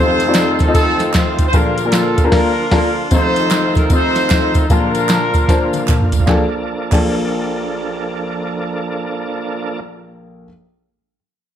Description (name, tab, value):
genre	uptempo gospel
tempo	152 BPM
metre	4/4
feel	swing 64% on 8ths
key	Bb major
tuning	A4 = 440 Hz
part	warm horn section	melody	0.0-5.8 s	C4 to C5	-17 LUFS	left 1 dB	none
part	warm upright piano	accompaniment	0.0-10.5 s	F1 to A5	-19 LUFS	left 2 dB	none
part	bright tonewheel organ	sustained chords	0.0-9.8 s	D3 to A4	-23 LUFS	right 3 dB	slow rotary speaker, overdrive, chorus vibrato
part	soft vintage rhythm box	drums	0.2-7.0 s	crash cymbal, hi-hat, kick drum, snare drum, toms	-16 LUFS	equal	none
part	tambourine and handclaps	percussion	0.2-7.0 s	none	-28 LUFS	right 3 dB	none
room	light reverb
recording	none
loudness	-13 LUFS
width	side -10 dB against mid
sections	0.0-3.1 A section; 3.1-6.3 B section; 6.3-9.4 C section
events	band accent 2.3-3.1; drum fill 5.5-6.3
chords	0.0 F7; 1.5 Bbmaj7; 3.1 F7; 4.7 Bbmaj7